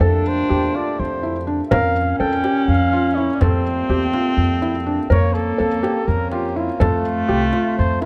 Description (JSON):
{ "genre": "contemporary instrumental, chamber music in an uneven meter", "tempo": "247 BPM (eighths)", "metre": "7/8", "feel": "straight", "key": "unclear", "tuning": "A4 = 440 Hz", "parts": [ { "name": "breathy flugelhorn", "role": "melody", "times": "0.0-8.1 s", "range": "F4 to G5", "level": "-26 LUFS", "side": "equal", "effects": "none" }, { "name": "warm clarinet", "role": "second line", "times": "0.0-8.1 s", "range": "A3 to D4", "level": "-24 LUFS", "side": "equal", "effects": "none" }, { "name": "pedal harmonium", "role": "sustained chords", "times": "0.0-8.1 s", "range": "Bb2 to G4", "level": "-32 LUFS", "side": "equal", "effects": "none" }, { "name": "felt-muted upright piano", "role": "arpeggios", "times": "0.0-8.1 s", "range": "D4 to Bb4", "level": "-26 LUFS", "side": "equal", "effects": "none" }, { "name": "upright bass", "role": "bass", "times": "0.0-8.1 s", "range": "C2 to F2", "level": "-23 LUFS", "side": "equal", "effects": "none" }, { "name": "frame drum", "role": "percussion", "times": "1.7-8.1 s", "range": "none", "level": "-28 LUFS", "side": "equal", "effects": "none" } ], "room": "light reverb", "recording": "close, detailed microphones", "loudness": "-19 LUFS", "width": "mono", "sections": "0.0-8.1 A section", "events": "none", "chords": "0.0 Am7; 1.7 Bbm/F; 3.4 Am7; 5.1 Bbmadd9/F; 6.8 F" }